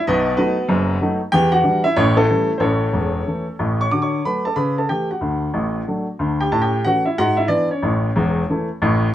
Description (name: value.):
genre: jazz, stride piano.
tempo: 185 BPM.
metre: 4/4.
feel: swing 65% on 8ths.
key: unclear.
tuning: A4 = 445 Hz.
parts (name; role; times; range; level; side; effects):
warm upright piano; solo; 0.0-9.1 s; E1 to D6; -16 LUFS; equal; none.
room: light reverb.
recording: dark, warm production.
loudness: -17 LUFS.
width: side -12 dB against mid.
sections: 0.0-3.9 A section; 3.9-9.1 B section.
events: none.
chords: 0.0 B7; 1.3 Em7; 2.0 A7; 2.6 A; 3.9 D; 4.6 A/C#; 5.2 D; 6.5 A; 7.2 E/G#; 7.8 A.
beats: | 0.03 0.36 0.68 1.00 | 1.33 1.65 1.98 2.30 | 2.62 2.95 3.27 3.60 | 3.92 4.25 4.57 4.90 | 5.22 5.55 5.87 6.20 | 6.52 6.85 7.17 7.50 | 7.82 8.14 8.47 8.79.